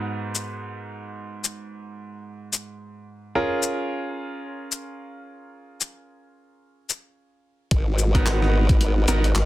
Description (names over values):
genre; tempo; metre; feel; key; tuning
glitch hop; 110 BPM; 4/4; swing 59% on 16ths; G# dorian; A4 = 440 Hz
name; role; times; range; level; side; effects
bright baby grand piano; stabs; 0.0-9.2 s; G#2 to A#4; -28 LUFS; right 2 dB; sidechain pumping, low-pass filter, dub echo
boom bap sampler-style drum kit; drums; 0.3-9.5 s; handclaps, hi-hat, rim click, shaker; -26 LUFS; left 4 dB; studio reverb
formant-sweep wobble bass; bass; 7.7-9.5 s; G#1; -20 LUFS; equal; chorus, tube saturation
electronic kick drum; drums; 7.7-8.8 s; none; -19 LUFS; equal; studio reverb
room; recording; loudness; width
little or no reverb; dense, heavily limited modern master; -22 LUFS; side -16 dB against mid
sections
0.0-7.7 A section; 7.7-9.5 B section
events
filter sweep on grand piano 0.0-7.7; drop 7.7-9.5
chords
0.0 G#m9; 3.4 A#m7; 7.7 G#m9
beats
0.08 0.63 | 1.17 1.72 2.26 2.81 | 3.35 3.90 4.44 4.99 | 5.54 6.08 6.63 7.17 | 7.72 8.26 8.81 9.35